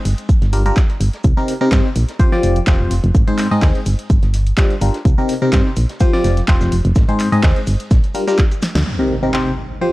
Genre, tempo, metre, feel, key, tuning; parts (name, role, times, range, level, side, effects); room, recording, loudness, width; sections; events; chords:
piano house; 126 BPM; 4/4; swing 54% on 16ths; C minor; A4 = 440 Hz
solid FM bass; bass; 0.1-8.8 s; Eb1 to G2; -16 LUFS; equal; sidechain pumping
house drum kit; drums; 0.1-9.4 s; handclaps, hi-hat, snare drum; -25 LUFS; equal; small room ambience
soft brush drum kit; drums; 0.1-8.9 s; hi-hat, shaker, snare drum; -36 LUFS; equal; sidechain pumping on hats, high-pass filter on hats, small room ambience, high-pass filter on snare, sidechain pumping on perc, high-pass filter on perc, high-pass filter on room
electronic kick drum; drums; 0.3-8.5 s; -14 LUFS; equal; small room ambience
barking FM electric piano; riff; 0.5-9.9 s; Ab2 to Eb5; -18 LUFS; left 1 dB; phaser, sidechain pumping, tape echo
impact; sound effects; 8.9-9.9 s; -24 LUFS; equal
small room ambience; dry, gritty hardware recording, cassette tape; -13 LUFS; side -18 dB against mid
0.0-8.9 A section; 8.9-9.9 B section
drum fill 8.6; band accent 8.7; impact 8.9-9.9
0.1 Gm7; 1.2 Cm7; 2.2 Fsus2; 3.1 Ab; 3.9 Gm7; 5.1 Cm7; 6.0 Fsus2; 7.0 Ab; 7.7 Gm7; 8.9 Cm7